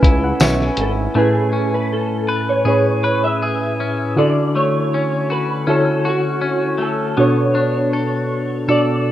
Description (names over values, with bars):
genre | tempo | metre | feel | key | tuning
indie pop, bedroom pop | 80 BPM | 4/4 | straight | A major | A4 = 439 Hz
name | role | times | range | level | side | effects
electric slide guitar | melody | 0.0-9.1 s | F#4 to E5 | -22 LUFS | right 2 dB | ensemble chorus
clean electric guitar | accompaniment | 0.0-9.1 s | D3 to B4 | -23 LUFS | left 4 dB | wide subtle chorus, vibrato effect
warbly lo-fi synth keys | accompaniment | 0.0-9.1 s | A2 to G#5 | -18 LUFS | equal | chorus, cassette tape
fat analog bass | bass | 0.0-1.1 s | G#1 to C#2 | -20 LUFS | equal | none
lo-fi sampler-style drum kit | drums | 0.0-0.9 s | hi-hat, kick drum, snare drum | -14 LUFS | equal | vintage 12-bit sampler grit
tambourine | percussion | 0.4-0.6 s | none | -29 LUFS | left 1 dB | none
room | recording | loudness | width
little or no reverb | rough home demo mix, cassette tape | -15 LUFS | side -12 dB against mid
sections
0.0-1.2 A section; 1.2-9.1 B section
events
synth keys fill 0.0-1.2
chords
0.0 Amaj7; 1.2 Amaj9; 4.2 Dmaj7; 7.2 Bm9